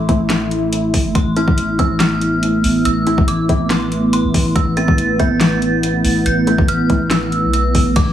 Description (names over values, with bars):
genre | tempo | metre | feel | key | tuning
deep dubstep | 141 BPM | 4/4 | half-time | A minor | A4 = 438 Hz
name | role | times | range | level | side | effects
dark detuned synth bell | melody | 0.0-8.1 s | C6 to A6 | -22 LUFS | right 2 dB | chorus, dub echo
dark analog pad | sustained chords | 0.0-8.1 s | A3 to E5 | -18 LUFS | right 1 dB | chorus
soft dub sub bass | bass | 0.0-8.1 s | G1 to B1 | -20 LUFS | left 1 dB | none
filtered dub chord stab | stabs | 0.1-7.0 s | A3 to E4 | -23 LUFS | left 1 dB | chorus, dub echo
deep house drum kit | drums | 0.1-8.1 s | handclaps, hi-hat, ride cymbal, snare drum | -21 LUFS | left 1 dB | overdrive, studio reverb
electronic kick drum | drums | 0.1-8.1 s | none | -17 LUFS | equal | overdrive, studio reverb
room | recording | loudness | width
light reverb | heavily compressed radio sound, multiband compression, small room ambience | -13 LUFS | side -10 dB against mid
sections
0.0-8.1 A section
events
none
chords
0.0 Am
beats
0.30 0.73 | 1.15 1.58 2.00 2.43 | 2.85 3.28 3.71 4.13 | 4.56 4.98 5.41 5.83 | 6.26 6.68 7.11 7.54 | 7.96